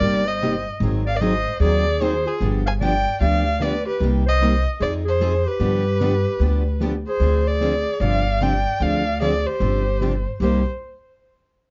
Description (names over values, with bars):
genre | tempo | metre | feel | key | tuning
acoustic string swing (jazz manouche) | 150 BPM | 4/4 | swing 63% on 8ths | C minor | A4 = 439 Hz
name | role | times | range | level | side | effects
warm violin | melody | 0.0-10.6 s | Ab4 to Ab5 | -26 LUFS | equal | plate reverb
breathy clarinet | second line | 0.0-10.6 s | F4 to F5 | -30 LUFS | equal | none
picked plugged-in steel-string acoustic guitar | accompaniment | 0.0-10.6 s | C3 to Ab4 | -28 LUFS | equal | none
picked steel-string acoustic guitar | accompaniment | 0.0-10.6 s | C3 to Ab4 | -30 LUFS | equal | none
upright bass | bass | 0.0-10.6 s | G1 to G2 | -24 LUFS | equal | none
room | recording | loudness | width
light reverb | dark, warm production, nothing above 7.5 kHz | -21 LUFS | mono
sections
0.0-7.2 A section; 7.2-10.4 B section; 10.4-11.7 C section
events
none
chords
0.0 Cm7; 0.8 Ab7; 2.4 G7; 4.0 Cm7; 4.8 Fm7; 5.6 G7; 7.2 Dm7b5; 8.0 G7sus4; 8.8 Dm7b5; 9.6 G7sus4; 10.4 Cm7